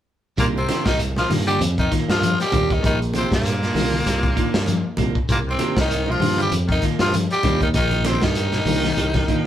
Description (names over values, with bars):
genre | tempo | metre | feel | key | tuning
afrobeat | 98 BPM | 4/4 | swing 56% on 16ths | C minor | A4 = 442 Hz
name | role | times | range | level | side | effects
breathy tenor saxophone | melody | 0.4-9.5 s | Bb3 to G4 | -24 LUFS | left 1 dB | none
oud | second line | 0.4-9.5 s | Bb2 to G3 | -30 LUFS | right 3 dB | none
raspy baritone saxophone | second line | 0.4-9.5 s | Bb2 to G3 | -30 LUFS | left 2 dB | none
mellow electric guitar | arpeggios | 0.4-9.5 s | C3 to G3 | -28 LUFS | left 6 dB | none
clean electric guitar | stabs | 0.4-9.5 s | Eb3 to F4 | -28 LUFS | right 5 dB | none
fingered electric bass | bass | 0.4-9.2 s | Bb1 to G2 | -24 LUFS | equal | none
crunchy breakbeat drum kit | drums | 0.4-9.4 s | hi-hat, kick drum, snare drum | -24 LUFS | equal | none
shekere | percussion | 0.4-9.5 s | none | -33 LUFS | right 3 dB | none
claves | percussion | 0.7-9.2 s | none | -42 LUFS | left 2 dB | none
congas | percussion | 0.7-9.4 s | none | -29 LUFS | right 1 dB | none
room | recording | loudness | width
moderate studio reverb, RT60 0.7 s | band playing live in one room | -18 LUFS | side -11 dB against mid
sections
0.4-9.5 A section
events
drum fill 9.0-9.5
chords
0.4 Cm11